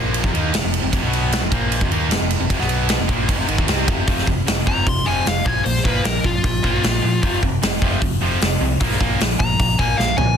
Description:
hard rock; 152 BPM; 4/4; straight; F minor; A4 = 440 Hz
cranked stack guitar; riff; 0.0-10.4 s; F2 to Eb4; -25 LUFS; left 10 dB; overdrive
distorted electric guitar; riff; 0.0-10.4 s; F2 to Eb4; -25 LUFS; right 13 dB; overdrive
hollow-body short-scale fingered electric bass; bass; 0.0-10.3 s; F1 to Bb2; -23 LUFS; equal
big rock drum kit; drums; 0.1-10.3 s; hi-hat, kick drum, ride cymbal, snare drum, toms; -20 LUFS; equal
dark smooth lead guitar; melody; 4.7-10.4 s; F4 to C6; -21 LUFS; left 2 dB; overdrive, slapback echo
little or no reverb; dense, heavily limited modern master; -16 LUFS; side -8 dB against mid
0.0-4.1 A section; 4.1-10.4 B section
lead electric guitar solo 4.1-10.4; drum fill 10.0-10.4
0.0 F5; 1.0 B5; 1.4 F5; 2.6 B5; 3.0 Fm; 4.1 F5; 5.5 Bb5; 7.2 F5; 8.8 Bb5

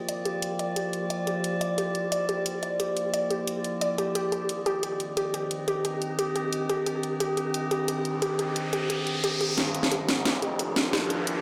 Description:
dark technical drum and bass; 177 BPM; 4/4; straight; G minor; A4 = 440 Hz
metallic inharmonic drone; sustained chords; 0.0-11.4 s; Eb3 to Eb5; -33 LUFS; equal; chorus, built-in reverb
warbly dusty pluck; arpeggios; 0.1-11.2 s; G4 to D5; -32 LUFS; equal; chorus, vintage 12-bit sampler grit, delay
drum and bass drum kit; drums; 0.1-11.3 s; hi-hat, snare drum; -32 LUFS; equal
riser; sound effects; 7.6-11.4 s; -36 LUFS; equal
phased detuned saw bass; bass; 9.6-11.4 s; F1 to Ab1; -35 LUFS; equal; phaser, tube saturation, high-pass filter
moderate plate reverb, RT60 1.1 s; played on a big sound system in a bare room, large studio reverb; -28 LUFS; mono
0.0-9.6 A section; 9.6-11.4 B section
riser 7.6-9.6, 9.6-11.4; build-up 9.6-11.4; drum fill 9.6-11.4; filter sweep on synth arpeggio sound 9.6-11.4
0.0 Gm7; 4.2 Cm; 9.6 Gm7

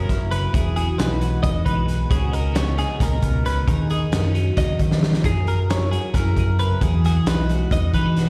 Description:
math rock and midwest emo; 268 BPM (eighths); 7/8; straight; A4 = 440 Hz
twelve-string electric guitar; accompaniment; 0.0-8.3 s; F#2 to A#4; -27 LUFS; equal; phaser
twelve-string electric guitar; arpeggios; 0.0-8.3 s; G#4 to D#5; -30 LUFS; equal; subtle chorus, analog delay, plate reverb
overdriven fingered electric bass; bass; 0.0-8.3 s; E1 to E3; -24 LUFS; equal
loose indie drum kit; drums; 0.1-8.3 s; hi-hat, kick drum, snare drum; -26 LUFS; equal
light reverb; live gig heard through the venue's PA, recital hall reverb; -20 LUFS; mono
0.0-8.3 A section
drum fill 4.9-5.2
0.0 F#7; 0.5 Emaj9; 2.1 C#9sus4; 3.7 Bmaj9/D#; 5.2 F#9; 6.8 Emaj9

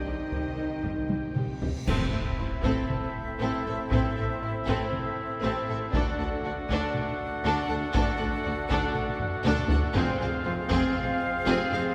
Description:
cinematic, epic orchestral film score; 119 BPM; 4/4; straight; A dorian; A4 = 440 Hz
rich studio violin section; melody; 0.0-11.8 s; Ab4 to F#5; -41 LUFS; equal
warm symphonic violin section; second line; 0.0-11.8 s; C4 to Eb5; -37 LUFS; equal
dark French horn section; sustained chords; 0.0-11.9 s; Ab3 to Eb4; -39 LUFS; equal
warm woodwind section; sustained chords; 0.0-11.9 s; A3 to G5; -38 LUFS; equal
rich studio cello section; bass; 0.0-11.8 s; D2 to Eb3; -37 LUFS; equal
rich symphonic double bass section; bass; 0.0-11.8 s; F1 to D2; -38 LUFS; equal
reverse cymbal and impact; sound effects; 1.6-3.9 s; -44 LUFS; equal
clear symphonic viola section; accompaniment; 0.1-11.8 s; G3 to G4; -38 LUFS; equal
taiko ensemble; drums; 0.3-11.2 s; -34 LUFS; equal
mellow trumpet section; stabs; 1.9-11.9 s; E4 to F#4; -38 LUFS; equal
clash cymbals and concert bass drum; percussion; 1.9-2.9 s; -36 LUFS; equal
wet church reverb, RT60 3.4 s; recorded in a church or concert hall; -28 LUFS; mono
0.0-1.9 A section; 1.9-11.9 B section
drum fill 1.1-1.9, 9.2-10.0; reverse cymbal 1.6; band accent 1.9-2.4; impact 1.9-3.9
0.0 Cm; 1.9 Am; 5.9 D; 10.0 Fm

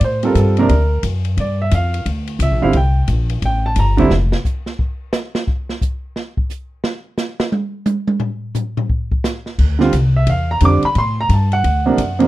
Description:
jazz, small-group swing and bop; 175 BPM; 4/4; swing 64% on 8ths; D minor; A4 = 440 Hz
warm baby grand piano; accompaniment; 0.0-4.1, 9.8-12.3 s; C3 to D6; -16 LUFS; right 3 dB
upright bass; bass; 0.0-4.3, 9.6-12.3 s; F1 to A2; -15 LUFS; left 1 dB
open jazz drum kit; drums; 0.0-12.3 s; crash cymbal, hi-hat, kick drum, ride cymbal, snare drum, toms; -22 LUFS; equal
little or no reverb; dry, close 1970s-style studio recording; -15 LUFS; side -16 dB against mid
0.0-9.6 A section; 9.6-12.3 A section
drum solo 4.1-9.6
0.0 Gm11; 0.7 Daug; 1.4 G7(no3); 2.7 C7(no3); 4.1 N.C.; 9.6 Dm11; 11.0 Gmadd9; 11.6 D7alt

